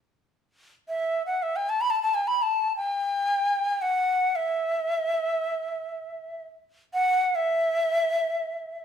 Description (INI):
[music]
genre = Arabic maqam ensemble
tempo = free time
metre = none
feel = none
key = E maqam rast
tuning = A4 = 440 Hz
[part]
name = bright reedy ney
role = solo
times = 0.9-8.8 s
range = E5 to B5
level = -24 LUFS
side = equal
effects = none
[sound]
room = moderate large studio reverb, RT60 1.0 s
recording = band playing live in one room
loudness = -23 LUFS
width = side -8 dB against mid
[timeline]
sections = 0.5-8.8 A section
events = none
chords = none